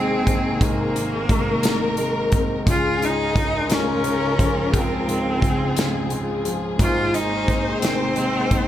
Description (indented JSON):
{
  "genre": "six-eight pop ballad",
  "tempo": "58 BPM (dotted quarters)",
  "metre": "6/8",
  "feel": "straight",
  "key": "Ab major",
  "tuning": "A4 = 440 Hz",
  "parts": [
    { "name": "bright cello", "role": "melody", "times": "0.0-8.7 s", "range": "Bb3 to F4", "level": "-24 LUFS", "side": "equal", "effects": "digital delay" },
    { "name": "warm studio violin section", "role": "second line", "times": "0.0-8.7 s", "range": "Ab4 to C5", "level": "-27 LUFS", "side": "left 2 dB", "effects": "none" },
    { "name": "clear concert grand piano", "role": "accompaniment", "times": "0.0-8.7 s", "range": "Ab1 to Ab3", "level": "-27 LUFS", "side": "right 1 dB", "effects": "none" },
    { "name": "dark studio string section", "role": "sustained chords", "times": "0.0-8.7 s", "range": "C3 to Bb4", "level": "-29 LUFS", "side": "left 1 dB", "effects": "none" },
    { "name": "fingerpicked plugged-in steel-string acoustic guitar", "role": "arpeggios", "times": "0.0-8.7 s", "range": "Db3 to Bb4", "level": "-31 LUFS", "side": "left 4 dB", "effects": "none" },
    { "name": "modern studio drum kit", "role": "drums", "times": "0.3-8.7 s", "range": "hi-hat, kick drum, snare drum", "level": "-22 LUFS", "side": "equal", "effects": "none" }
  ],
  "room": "light reverb, studio reverb",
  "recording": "none",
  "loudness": "-18 LUFS",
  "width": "side -12 dB against mid",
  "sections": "0.0-8.7 A section",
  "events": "none",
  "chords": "0.0 Abadd9; 2.7 Db; 6.8 Abadd9"
}